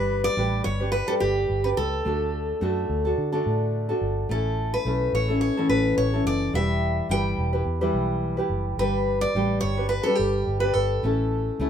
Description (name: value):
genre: acoustic pop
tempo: 107 BPM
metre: 4/4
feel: swing 55% on 16ths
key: unclear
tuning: A4 = 440 Hz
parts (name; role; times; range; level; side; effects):
- picked steel-string acoustic guitar; melody; 0.0-11.7 s; G4 to G5; -26 LUFS; left 1 dB; none
- nylon-string guitar; accompaniment; 0.0-11.7 s; A2 to B4; -26 LUFS; equal; none
- vintage muted fingered electric bass; bass; 0.0-11.7 s; E1 to D3; -27 LUFS; equal; none
room: light reverb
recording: minimal, uncompressed stereo recording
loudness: -22 LUFS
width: side -8 dB against mid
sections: 0.0-11.7 A section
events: none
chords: 0.0 G; 2.1 D; 4.3 A; 6.5 Em; 8.8 G; 11.0 A